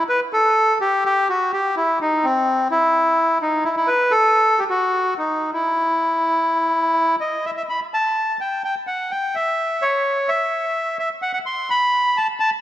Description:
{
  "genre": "tango",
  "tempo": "127 BPM",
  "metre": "4/4",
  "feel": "rubato",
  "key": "E harmonic minor",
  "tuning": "A4 = 440 Hz",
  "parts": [
    { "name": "bandoneon", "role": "solo", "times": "0.0-12.5 s", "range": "C4 to C6", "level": "-17 LUFS", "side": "equal", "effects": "tape echo" }
  ],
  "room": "moderate recital hall reverb, RT60 1.7 s",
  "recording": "none",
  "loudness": "-17 LUFS",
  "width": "side -13 dB against mid",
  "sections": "0.0-7.7 A section; 7.7-12.6 B section",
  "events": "none",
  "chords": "none"
}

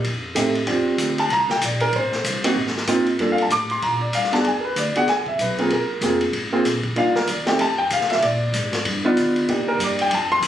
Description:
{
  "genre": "jazz, small-group swing and bop",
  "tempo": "191 BPM",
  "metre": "4/4",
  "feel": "swing 61% on 8ths",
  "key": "Bb major",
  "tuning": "A4 = 443 Hz",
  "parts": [
    { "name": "upright bass", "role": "bass", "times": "0.0-10.5 s", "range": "F1 to D3", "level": "-29 LUFS", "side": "equal", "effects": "none" },
    { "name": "vintage drum kit", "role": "drums", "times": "0.0-10.5 s", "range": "hi-hat, kick drum, ride cymbal, snare drum", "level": "-26 LUFS", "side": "left 2 dB", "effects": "none" },
    { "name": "warm grand piano", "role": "accompaniment", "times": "0.4-10.4 s", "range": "A3 to D6", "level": "-20 LUFS", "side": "right 1 dB", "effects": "none" }
  ],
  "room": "light reverb",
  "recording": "recorded on a phone in the room, studio reverb, compression, faint mains hum",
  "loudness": "-18 LUFS",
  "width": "side -11 dB against mid",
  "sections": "0.7-10.5 A section",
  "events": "none",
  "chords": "0.0 F9; 0.7 Bb69; 1.9 Adim; 2.6 Abadd9; 3.2 Gm7; 4.5 E9; 5.7 Gbmaj9#11; 7.0 Cm11; 7.6 F5; 8.2 Bb; 8.9 G7b13; 9.5 Cm7"
}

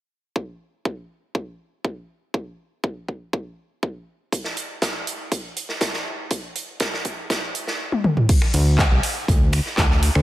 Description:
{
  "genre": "progressive house",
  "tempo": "121 BPM",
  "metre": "4/4",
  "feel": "straight",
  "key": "unclear",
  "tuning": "A4 = 440 Hz",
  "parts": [
    { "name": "electronic kick drum", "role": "drums", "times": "0.4-9.9 s", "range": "none", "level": "-22 LUFS", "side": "equal", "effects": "high-pass filter on kick" },
    { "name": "big rock drum kit", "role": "drums", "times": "4.3-10.2 s", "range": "hi-hat, snare drum", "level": "-27 LUFS", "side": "right 2 dB", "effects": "sidechain pumping on hats, high-pass filter on hats, high-pass filter on snare, high-pass filter on room" },
    { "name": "pop drum kit", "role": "drums", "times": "7.9-10.2 s", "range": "crash cymbal, finger snaps, handclaps, hi-hat, toms", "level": "-22 LUFS", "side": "left 1 dB", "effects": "none" },
    { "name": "fat analog bass", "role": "bass", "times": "8.5-10.2 s", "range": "C2 to D2", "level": "-18 LUFS", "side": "equal", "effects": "sidechain pumping" }
  ],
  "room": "light reverb, small room ambience",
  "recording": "none",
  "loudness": "-21 LUFS",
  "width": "side -15 dB against mid",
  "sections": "0.4-8.3 A section; 8.3-10.2 B section",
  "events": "drum fill 7.9-8.3",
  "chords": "none"
}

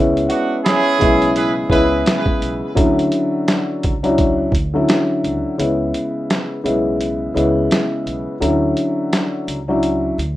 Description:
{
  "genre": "hip hop, boom-bap hip-hop",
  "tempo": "85 BPM",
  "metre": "4/4",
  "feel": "swing 61% on 16ths",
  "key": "C# phrygian",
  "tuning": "A4 = 441 Hz",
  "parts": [
    { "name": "dark upright piano", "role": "accompaniment", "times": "0.0-10.2 s", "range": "C#3 to E4", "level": "-17 LUFS", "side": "left 1 dB", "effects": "none" },
    { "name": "upright bass", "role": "bass", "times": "0.0-10.4 s", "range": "B1 to D2", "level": "-25 LUFS", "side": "right 1 dB", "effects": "none" },
    { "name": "boom bap sampler-style drum kit", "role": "drums", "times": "0.2-10.4 s", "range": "hi-hat, kick drum, snare drum", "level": "-19 LUFS", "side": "right 1 dB", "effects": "none" },
    { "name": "mellow horn section", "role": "stabs", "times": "0.3-2.2 s", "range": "B3 to B4", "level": "-18 LUFS", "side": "right 2 dB", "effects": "digital delay" }
  ],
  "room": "moderate studio reverb, RT60 0.6 s",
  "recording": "rough home demo mix",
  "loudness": "-15 LUFS",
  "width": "side -15 dB against mid",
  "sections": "0.0-5.6 A section; 5.6-10.4 B section",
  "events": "break 5.6-10.4",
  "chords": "0.0 C#m7; 2.8 Dmaj9; 5.6 C#m7; 8.4 Dmaj9"
}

